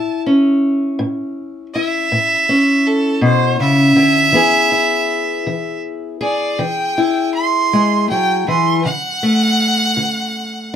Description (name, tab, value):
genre	acoustic country blues, solo or duo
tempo	54 BPM (dotted quarters)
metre	12/8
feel	straight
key	A major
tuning	A4 = 440 Hz
part	bright fiddle	melody	0.0-10.8 s	A4 to C6	-16 LUFS	right 2 dB	none
part	fingerpicked steel-string acoustic guitar	accompaniment	0.0-10.8 s	A2 to G#4	-16 LUFS	left 1 dB	none
room	moderate small room reverb, RT60 0.6 s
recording	close, detailed microphones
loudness	-13 LUFS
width	side -9 dB against mid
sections	0.0-10.8 A section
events	none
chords	0.0 A; 4.3 E; 8.8 D